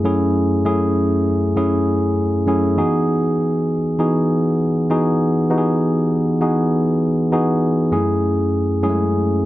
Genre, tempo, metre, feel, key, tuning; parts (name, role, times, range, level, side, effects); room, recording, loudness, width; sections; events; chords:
R&B; 99 BPM; 4/4; swing 66% on 16ths; A4 = 439 Hz
bright tine electric piano; solo; 0.0-9.5 s; F#2 to G#4; -16 LUFS; equal
moderate plate reverb, RT60 2.8 s; dark, warm production; -16 LUFS; side -15 dB against mid
0.0-9.5 A section
0.0 F#m7; 2.8 Emaj7; 7.9 F#m7